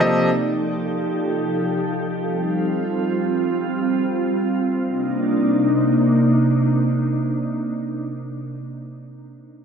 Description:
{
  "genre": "amapiano",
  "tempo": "free time",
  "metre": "none",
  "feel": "none",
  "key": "C dorian",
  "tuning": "A4 = 439 Hz",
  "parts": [
    { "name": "glassy FM pad", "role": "sustained chords", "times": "0.0-7.6 s", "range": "C3 to A4", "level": "-19 LUFS", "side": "right 1 dB", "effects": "ensemble chorus, built-in reverb" }
  ],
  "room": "moderate lush hall reverb, RT60 2.0 s",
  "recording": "none",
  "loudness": "-18 LUFS",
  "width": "side -7 dB against mid",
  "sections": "0.0-4.7 A section; 4.7-6.9 B section",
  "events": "none",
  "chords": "0.0 F9; 2.2 G7sus4; 4.7 Cm9"
}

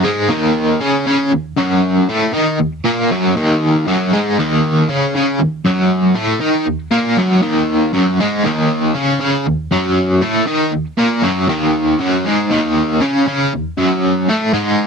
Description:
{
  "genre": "rock",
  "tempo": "118 BPM",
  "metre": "4/4",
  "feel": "straight",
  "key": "Eb minor",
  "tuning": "A4 = 440 Hz",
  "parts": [
    { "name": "crunchy overdriven guitar", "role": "solo", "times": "0.0-14.9 s", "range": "Eb2 to Eb4", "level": "-13 LUFS", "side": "equal", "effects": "tremolo" }
  ],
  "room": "light reverb",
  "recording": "dry, close 1970s-style studio recording, lossy compression artefacts",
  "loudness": "-13 LUFS",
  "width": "side -5 dB against mid",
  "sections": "0.0-14.9 A section",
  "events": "none",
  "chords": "0.0 Ebm"
}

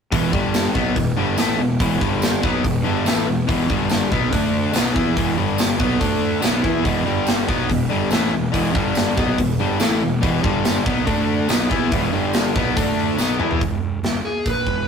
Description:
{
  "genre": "classic rock",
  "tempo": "142 BPM",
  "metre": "4/4",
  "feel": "straight",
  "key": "unclear",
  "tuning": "A4 = 441 Hz",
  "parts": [
    { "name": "cranked stack guitar", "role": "riff", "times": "0.1-13.6 s", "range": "E2 to E4", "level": "-22 LUFS", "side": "left 6 dB", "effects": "overdrive" },
    { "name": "overdriven semi-hollow guitar", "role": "riff", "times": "0.1-13.6 s", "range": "E2 to E4", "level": "-24 LUFS", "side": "right 4 dB", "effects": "none" },
    { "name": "fuzz fingered electric bass", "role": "bass", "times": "0.1-14.9 s", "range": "E1 to E2", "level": "-26 LUFS", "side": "equal", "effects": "overdrive" },
    { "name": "big rock drum kit", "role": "drums", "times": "0.1-14.8 s", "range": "hi-hat, kick drum, snare drum, toms", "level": "-22 LUFS", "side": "right 1 dB", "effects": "none" },
    { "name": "string machine, cellos", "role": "sustained chords", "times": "0.3-13.6 s", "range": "G3 to D5", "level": "-33 LUFS", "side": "right 1 dB", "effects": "none" },
    { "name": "tambourine", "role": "percussion", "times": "0.5-13.3 s", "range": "none", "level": "-30 LUFS", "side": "right 3 dB", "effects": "none" },
    { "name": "dark smooth lead guitar", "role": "melody", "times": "14.3-14.9 s", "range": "G#4 to B4", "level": "-22 LUFS", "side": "right 1 dB", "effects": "overdrive" }
  ],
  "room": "light reverb",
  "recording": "rough rehearsal-room recording, tube saturation",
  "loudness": "-17 LUFS",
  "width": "side -6 dB against mid",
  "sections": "0.1-13.6 A section; 13.6-14.9 B section",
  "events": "drum fill 13.2-13.6",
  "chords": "0.1 E5; 0.3 G5; 0.8 E; 2.0 G5; 2.4 E; 3.7 G5; 4.1 B5; 4.3 D5; 4.7 E; 5.4 G5; 5.8 B5; 6.0 D5; 6.4 E; 7.1 G5; 7.5 E; 8.8 G5; 9.2 E; 10.4 G5; 10.9 B5; 11.1 D5; 11.5 E; 12.1 G5; 12.6 B5; 12.8 D5; 13.2 E; 13.6 E5"
}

